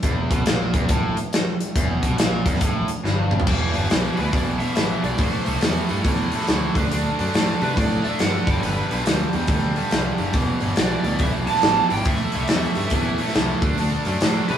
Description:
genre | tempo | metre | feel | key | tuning
blues rock power trio and southern rock | 140 BPM | 4/4 | swing 64% on 8ths | E minor | A4 = 441 Hz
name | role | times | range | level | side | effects
cranked stack guitar | riff | 0.0-14.6 s | E2 to D4 | -24 LUFS | equal | overdrive
growling picked electric bass | bass | 0.0-14.6 s | E1 to C3 | -26 LUFS | equal | overdrive
big rock drum kit | drums | 0.0-14.6 s | crash cymbal, hi-hat, kick drum, snare drum, toms | -22 LUFS | equal | none
lead guitar through a small cranked amp | melody | 4.2-14.6 s | A#4 to A5 | -26 LUFS | right 4 dB | overdrive
room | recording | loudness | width
moderate stone room reverb, RT60 1.2 s | band playing live in one room, small room ambience | -19 LUFS | side -9 dB against mid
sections
0.0-3.5 A section; 3.5-14.6 B section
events
drum fill 3.0-3.5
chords
0.0 Em; 3.5 E5; 5.2 Am; 6.7 D5; 8.4 G; 10.3 E5; 12.1 Am; 13.6 D5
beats
| 0.04 0.47 0.90 1.33 | 1.76 2.19 2.62 3.05 | 3.48 3.91 4.34 4.77 | 5.20 5.62 6.05 6.49 | 6.91 7.34 7.77 8.20 | 8.63 9.06 9.49 9.92 | 10.35 10.78 11.21 11.64 | 12.07 12.50 12.93 13.35 | 13.78 14.21

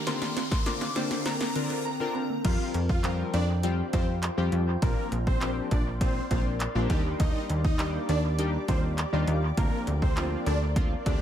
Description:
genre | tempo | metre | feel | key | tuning
dance-pop | 101 BPM | 4/4 | straight | Bb major | A4 = 439 Hz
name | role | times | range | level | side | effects
shimmering bell with halo | melody | 0.0-2.3 s | Bb5 to D6 | -36 LUFS | left 1 dB | ensemble chorus, dub echo
shimmering ambient pad | sustained chords | 0.0-11.2 s | D3 to D6 | -36 LUFS | equal | chorus, built-in reverb, sidechain pumping
riser | sound effects | 0.0-1.9 s | none | -37 LUFS | left 3 dB | none
chorused retro synth keys | accompaniment | 0.1-11.2 s | D3 to C5 | -33 LUFS | left 3 dB | sidechain pumping, dub echo
punchy analog drum machine | drums | 0.1-11.2 s | crash cymbal, handclaps, hi-hat, kick drum, snare drum | -29 LUFS | equal | none
thumb-piano-like synth pluck | arpeggios | 0.2-2.4 s | D3 to C4 | -38 LUFS | right 4 dB | chorus, sidechain pumping, dub echo
supersaw chords | melody | 2.4-11.2 s | G3 to F5 | -35 LUFS | equal | sidechain pumping, dub echo
plucky analog bass | bass | 2.4-11.2 s | Bb1 to F2 | -28 LUFS | equal | sidechain pumping
room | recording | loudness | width
light reverb | echo-heavy mix | -25 LUFS | side -10 dB against mid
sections
0.0-2.4 A section; 2.4-11.2 B section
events
build-up 0.0-2.4; drum fill 0.0-1.9; riser 0.0-2.4; drop 2.4-11.2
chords
0.1 Bbadd9/D; 2.4 Fsus2; 4.8 Bbadd9; 6.9 Ebmaj7; 9.6 Bbadd9/D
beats
| 0.07 0.66 1.26 1.85 | 2.45 3.04 3.63 4.23 | 4.82 5.42 6.01 6.60 | 7.20 7.79 8.39 8.98 | 9.57 10.17 10.76

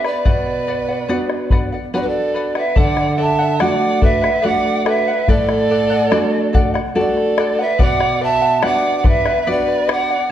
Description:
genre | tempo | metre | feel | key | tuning
andean folk, Andean ensemble | 72 BPM | 3/4 | straight | unclear | A4 = 442 Hz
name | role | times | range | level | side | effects
polished pan flute | melody | 0.0-10.3 s | B4 to A5 | -19 LUFS | right 1 dB | none
warm violin | second line | 0.0-10.3 s | F#4 to E5 | -23 LUFS | right 4 dB | none
charango | accompaniment | 0.0-10.3 s | A4 to B5 | -23 LUFS | left 2 dB | none
nylon-string guitar | accompaniment | 0.0-10.1 s | A2 to F#4 | -22 LUFS | right 1 dB | none
bombo | percussion | 0.0-10.1 s | none | -19 LUFS | left 1 dB | none
room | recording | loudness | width
wet recital hall reverb, RT60 1.7 s | dark, warm production | -14 LUFS | side -11 dB against mid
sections
0.0-2.8 A section; 2.8-10.3 B section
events
none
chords
0.3 Bm; 2.8 D; 7.8 Bm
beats
| 0.25 1.09 1.93 | 2.77 3.61 4.44 | 5.28 6.12 6.96 | 7.80 8.63 9.47 | 10.31

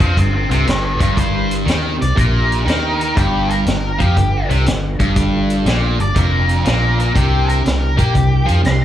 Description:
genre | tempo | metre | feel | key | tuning
blues rock power trio and southern rock | 120 BPM | 4/4 | swing 67% on 8ths | unclear | A4 = 440 Hz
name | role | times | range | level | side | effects
octave-fuzz lead guitar | melody | 0.0-8.8 s | G4 to C6 | -22 LUFS | left 1 dB | distortion, slapback echo, analog delay
mellow tonewheel organ | sustained chords | 0.0-8.8 s | B3 to A5 | -29 LUFS | right 3 dB | slow rotary speaker, chorus vibrato
distorted electric guitar | riff | 0.0-8.8 s | F2 to Bb3 | -19 LUFS | equal | overdrive, slapback echo
vintage muted fingered electric bass | bass | 0.0-8.8 s | F1 to Bb2 | -17 LUFS | equal | none
vintage drum kit | drums | 0.0-8.8 s | hi-hat, kick drum, snare drum | -20 LUFS | equal | none
room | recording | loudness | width
small room ambience | live gig heard through the venue's PA, club ambience | -13 LUFS | side -11 dB against mid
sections
0.0-8.8 A section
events
none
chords
0.0 G7; 1.2 C7; 3.2 G7; 7.2 C7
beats
0.17 0.67 | 1.17 1.67 2.17 2.67 | 3.17 3.67 4.17 4.66 | 5.16 5.66 6.16 6.66 | 7.16 7.65 8.15 8.65

